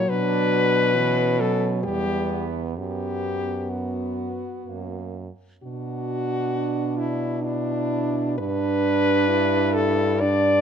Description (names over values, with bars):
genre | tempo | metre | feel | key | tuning
classical, lyrical piece for horn quartet | 61-70 BPM | 3/4 | rubato | B minor | A4 = 441 Hz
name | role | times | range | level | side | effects
warm French horn | melody | 0.0-10.6 s | D4 to D5 | -24 LUFS | left 6 dB | none
mellow French horn | second line | 0.0-10.6 s | A#3 to D4 | -28 LUFS | right 14 dB | none
dark French horn | accompaniment | 0.0-10.6 s | E3 to E4 | -28 LUFS | right 1 dB | none
mellow French horn | bass | 0.0-10.6 s | E2 to B2 | -28 LUFS | right 3 dB | none
room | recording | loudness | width
light reverb | close, detailed microphones | -21 LUFS | side -8 dB against mid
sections
0.0-10.6 A section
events
none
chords
0.1 Bm; 1.8 Em; 2.8 B5/F#; 5.6 Bm; 8.4 G